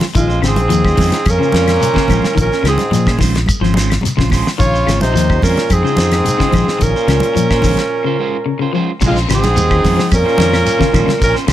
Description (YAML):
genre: afrobeat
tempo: 108 BPM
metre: 4/4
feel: straight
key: Bb minor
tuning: A4 = 438 Hz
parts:
  - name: electric guitar at the edge of break-up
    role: stabs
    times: 0.0-11.5 s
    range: Ab3 to C5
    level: -22 LUFS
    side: right 6 dB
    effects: phaser
  - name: damped 70s drum kit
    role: drums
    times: 0.0-11.5 s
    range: crash cymbal, hi-hat, kick drum, ride cymbal, snare drum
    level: -18 LUFS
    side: equal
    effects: none
  - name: congas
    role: percussion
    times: 0.0-11.2 s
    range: none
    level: -23 LUFS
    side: right 3 dB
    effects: none
  - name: shekere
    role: percussion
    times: 0.0-11.5 s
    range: none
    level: -25 LUFS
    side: right 1 dB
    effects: none
  - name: electric guitar at the edge of break-up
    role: arpeggios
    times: 0.1-11.5 s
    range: C3 to F3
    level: -20 LUFS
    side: left 6 dB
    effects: tape echo
  - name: breathy alto saxophone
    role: melody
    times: 0.2-11.4 s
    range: F4 to Db5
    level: -17 LUFS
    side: right 2 dB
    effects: none
  - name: bright trumpet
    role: second line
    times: 0.2-11.5 s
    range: Ab3 to F4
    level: -24 LUFS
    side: right 5 dB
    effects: none
  - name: mellow trombone section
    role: second line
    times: 0.2-11.5 s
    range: F2 to Db3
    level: -23 LUFS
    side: left 4 dB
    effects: none
  - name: fingered electric bass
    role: bass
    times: 0.2-11.5 s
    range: Ab1 to Bb2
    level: -16 LUFS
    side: equal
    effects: none
  - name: claves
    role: percussion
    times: 0.4-11.5 s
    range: none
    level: -28 LUFS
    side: left 9 dB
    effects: none
room: light reverb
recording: none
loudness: -11 LUFS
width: side -12 dB against mid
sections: 0.0-9.0 A section; 9.0-11.5 A section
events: drum fill 0.0; break 7.9-9.0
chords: 0.0 Bbm9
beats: | 0.15 0.71 1.26 1.82 | 2.37 2.93 3.48 4.04 | 4.59 5.14 5.70 6.25 | 6.80 7.36 7.91 8.46 | 9.01 9.56 10.11 10.66 | 11.21